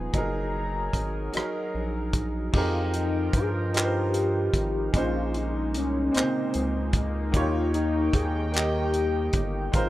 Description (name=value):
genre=slow six-eight R&B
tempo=50 BPM (dotted quarters)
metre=6/8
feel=straight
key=F minor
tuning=A4 = 440 Hz
part: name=bright concert grand piano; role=accompaniment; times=0.0-9.9 s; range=Bb2 to Eb5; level=-32 LUFS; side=right 1 dB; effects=none
part: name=chorused pulse-width pad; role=sustained chords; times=0.0-9.9 s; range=Eb3 to G5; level=-32 LUFS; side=equal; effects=none
part: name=round analog bass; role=bass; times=0.0-9.9 s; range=Gb1 to G2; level=-29 LUFS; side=equal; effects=none
part: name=cloth-damped thuddy drum kit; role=drums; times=0.1-9.9 s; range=crash cymbal, handclaps, hi-hat, kick drum, rim click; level=-27 LUFS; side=equal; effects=none
part: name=warm velvety synth lead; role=melody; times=0.2-9.9 s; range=C4 to Bb5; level=-30 LUFS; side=left 2 dB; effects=chorus
room=small room ambience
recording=rough home demo mix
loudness=-24 LUFS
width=side -15 dB against mid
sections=0.0-2.5 A section; 2.5-9.9 B section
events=none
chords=0.1 Gb69; 2.5 Fm11; 4.9 Bbm11; 7.3 Eb7